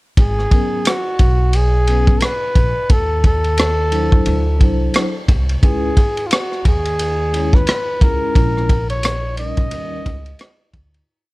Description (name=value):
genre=hip hop, jazz-hop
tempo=88 BPM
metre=4/4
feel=swing 59% on 16ths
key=G# minor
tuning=A4 = 440 Hz
part: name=breathy flugelhorn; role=melody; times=0.2-10.7 s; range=E#4 to D#5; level=-21 LUFS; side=equal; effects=none
part: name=upright bass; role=bass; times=0.2-11.0 s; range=G#1 to D#2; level=-19 LUFS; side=equal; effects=none
part: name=crunchy breakbeat drum kit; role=drums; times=0.2-11.1 s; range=hi-hat, kick drum, ride cymbal, rim click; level=-16 LUFS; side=equal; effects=none
part: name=vibraphone with soft mallets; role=accompaniment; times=0.5-10.1 s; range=F#3 to C#5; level=-24 LUFS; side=left 1 dB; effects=none
room=small room ambience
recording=none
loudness=-14 LUFS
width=side -21 dB against mid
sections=0.2-11.1 head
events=fade-out 8.4-11.1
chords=0.2 G#m11; 2.9 D#dim; 4.3 D9; 5.6 C#m; 8.4 A#m7b5; 9.7 D#7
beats=| 0.17 0.85 1.53 2.22 | 2.90 3.58 4.26 4.94 | 5.63 6.31 6.99 7.67 | 8.35 9.04 9.72 10.40